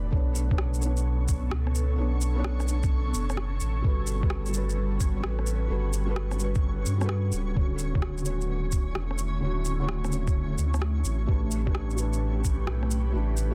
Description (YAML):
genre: future garage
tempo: 129 BPM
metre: 4/4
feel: swing 66% on 16ths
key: B minor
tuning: A4 = 440 Hz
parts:
  - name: felt-muted upright piano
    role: accompaniment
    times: 0.0-13.5 s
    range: D3 to D5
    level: -37 LUFS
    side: equal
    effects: vintage 12-bit sampler grit, sidechain pumping, delay
  - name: airy breathy pad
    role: sustained chords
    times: 0.0-13.5 s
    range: A2 to C#6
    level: -39 LUFS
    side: equal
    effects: chorus, phaser, vintage 12-bit sampler grit, sidechain pumping
  - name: warm sub bass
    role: bass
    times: 0.0-13.5 s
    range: D1 to G2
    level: -30 LUFS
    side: equal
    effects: sidechain pumping
  - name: flickering grainy texture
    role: texture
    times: 0.0-13.5 s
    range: C#4 to C#6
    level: -44 LUFS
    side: equal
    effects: built-in reverb
  - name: electronic kick drum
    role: drums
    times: 0.1-12.6 s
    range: none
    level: -28 LUFS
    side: equal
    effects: small room ambience
  - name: electronic shaker and rim click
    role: drums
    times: 0.4-13.5 s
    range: none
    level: -38 LUFS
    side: equal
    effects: small room ambience, soft clipping on snare
room: little or no reverb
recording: dense, heavily limited modern master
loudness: -27 LUFS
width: mono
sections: 0.0-13.5 A section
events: none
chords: 0.1 Bm9; 3.8 Gmaj9; 7.6 Dmaj7; 11.3 A9sus4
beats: | 0.12 0.58 1.05 1.51 | 1.98 2.44 2.91 3.38 | 3.84 4.31 4.77 5.24 | 5.70 6.17 6.63 7.10 | 7.56 8.03 8.49 8.96 | 9.42 9.89 10.35 10.82 | 11.28 11.75 12.21 12.68 | 13.14